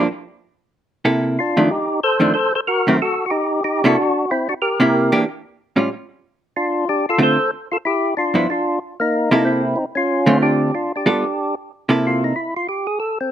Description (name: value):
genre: jazz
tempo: 186 BPM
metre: 4/4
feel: swing 61% on 8ths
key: C mixolydian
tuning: A4 = 440 Hz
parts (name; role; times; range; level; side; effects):
- percussive tonewheel organ; melody; 0.0-13.3 s; Bb3 to C5; -18 LUFS; left 1 dB; slow rotary speaker, overdrive, slapback echo
- vintage hollow-body jazz guitar; accompaniment; 0.0-12.3 s; F2 to A4; -16 LUFS; right 1 dB; none
room: little or no reverb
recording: recorded outdoors, with no room sound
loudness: -16 LUFS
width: side -10 dB against mid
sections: 0.0-11.7 A section; 11.7-13.3 B section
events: tonewheel organ solo 11.7-13.3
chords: 0.1 N.C.; 0.7 C6; 1.4 F13; 2.7 F#dim7; 4.0 C9; 5.2 Aaug7; 5.9 N.C.; 6.5 Dm7; 7.8 G6; 9.1 C6; 9.8 Aaug; 11.1 G9; 11.7 C6